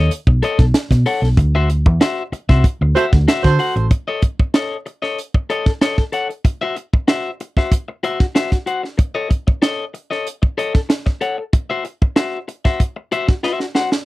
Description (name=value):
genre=funk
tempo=94 BPM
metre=4/4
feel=straight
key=unclear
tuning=A4 = 440 Hz
part: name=electric guitar at the edge of break-up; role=accompaniment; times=0.0-14.0 s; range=F#4 to F#5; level=-21 LUFS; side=left 4 dB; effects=none
part: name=hollow-body short-scale fingered electric bass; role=bass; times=0.0-3.9 s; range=A1 to D3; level=-15 LUFS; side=equal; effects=none
part: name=tight funk drum kit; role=drums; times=0.1-14.1 s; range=hi-hat, kick drum, snare drum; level=-15 LUFS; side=equal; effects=none
part: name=warm horn section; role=second line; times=2.9-3.9 s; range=F#4 to C5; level=-18 LUFS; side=right 6 dB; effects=none
room=little or no reverb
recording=dry, close 1970s-style studio recording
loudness=-15 LUFS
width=side -18 dB against mid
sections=0.0-3.9 A section; 3.9-14.1 B section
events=band accent 1.4-3.9; drum fill 13.4-14.1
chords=0.0 B9; 1.4 D9; 3.9 F#m6/A (rootless); 6.4 C; 9.0 A; 11.5 C